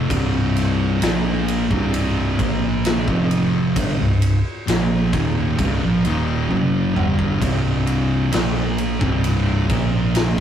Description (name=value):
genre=stoner and doom metal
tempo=66 BPM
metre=4/4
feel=straight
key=C minor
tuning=A4 = 440 Hz
part: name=thick fuzz guitar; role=riff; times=0.0-10.4 s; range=C2 to Bb3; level=-23 LUFS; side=left 5 dB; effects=distortion
part: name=thick fuzz guitar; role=riff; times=0.0-10.4 s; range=C2 to Bb3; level=-21 LUFS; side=right 5 dB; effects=distortion
part: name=hollow-body short-scale fingered electric bass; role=bass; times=0.0-10.4 s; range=C1 to Bb1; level=-25 LUFS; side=equal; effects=overdrive
part: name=big rock drum kit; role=drums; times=0.1-10.4 s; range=kick drum, ride cymbal, snare drum, toms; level=-23 LUFS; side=equal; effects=none
room=moderate small room reverb, RT60 0.5 s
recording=rough rehearsal-room recording, warm saturation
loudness=-17 LUFS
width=side -9 dB against mid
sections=0.0-10.4 A section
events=drum fill 6.5-7.4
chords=0.0 Cm